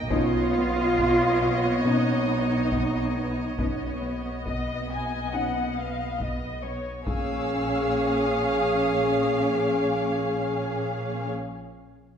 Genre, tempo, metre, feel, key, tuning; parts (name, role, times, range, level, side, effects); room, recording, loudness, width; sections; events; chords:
cinematic, suspense film score; 69 BPM; 4/4; straight; A4 = 440 Hz
muted chamber violin section; melody; 0.0-11.3 s; D#5 to F5; -33 LUFS; right 1 dB
muted chamber violin section; second line; 0.0-11.3 s; Ab4 to Ab5; -32 LUFS; left 3 dB
muted chamber viola section; accompaniment; 0.0-11.3 s; B3 to Db4; -30 LUFS; equal
muted chamber double bass section; bass; 0.0-11.3 s; Bb1 to B1; -33 LUFS; right 1 dB
dark French horn section; sustained chords; 0.1-11.3 s; C#4 to Ab4; -29 LUFS; left 1 dB
muted chamber cello section; riff; 0.1-6.9 s; B2 to B3; -35 LUFS; left 1 dB
muted chamber cello section; bass; 0.1-11.3 s; Bb3 to F4; -29 LUFS; right 1 dB
solo taiko drums; drums; 0.1-8.8 s; -34 LUFS; left 1 dB
muted studio violin section; texture; 7.1-10.1 s; Db6 to E6; -37 LUFS; left 5 dB
wet scoring stage reverb, RT60 1.6 s; minimal, uncompressed stereo recording; -23 LUFS; side -8 dB against mid
0.0-7.1 A section; 7.1-10.5 B section
0.1 Badd9; 7.1 Bbm7